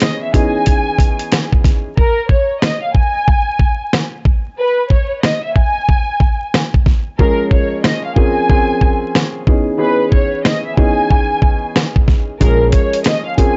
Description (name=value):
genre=hip hop, boom-bap hip-hop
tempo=92 BPM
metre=4/4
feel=swing 62% on 16ths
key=unclear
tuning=A4 = 439 Hz
part: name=warm studio violin section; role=melody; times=0.0-13.6 s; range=Bb4 to Ab5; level=-20 LUFS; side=equal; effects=high-pass filter, low-pass filter, tape echo
part: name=dark upright piano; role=accompaniment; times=0.0-1.9, 7.2-13.6 s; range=Fb3 to Ab4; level=-21 LUFS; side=equal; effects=high-pass filter, low-pass filter
part: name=dusty soul sampler-style drum kit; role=drums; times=0.0-13.6 s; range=hi-hat, kick drum, snare drum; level=-16 LUFS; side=equal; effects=none
part: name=upright bass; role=bass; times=12.4-12.7 s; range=Bb1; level=-19 LUFS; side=equal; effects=transformer saturation
room=small room reverb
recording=dry, gritty hardware recording, transformer saturation, vinyl crackle, nothing above 7.8 kHz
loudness=-14 LUFS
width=mono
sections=0.0-2.0 A section; 2.0-13.6 B section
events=hi-hats muted 2.0-12.4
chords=0.0 Dbm9; 2.0 N.C.; 7.2 Bbm9; 9.5 Dbm9; 12.4 Bbm9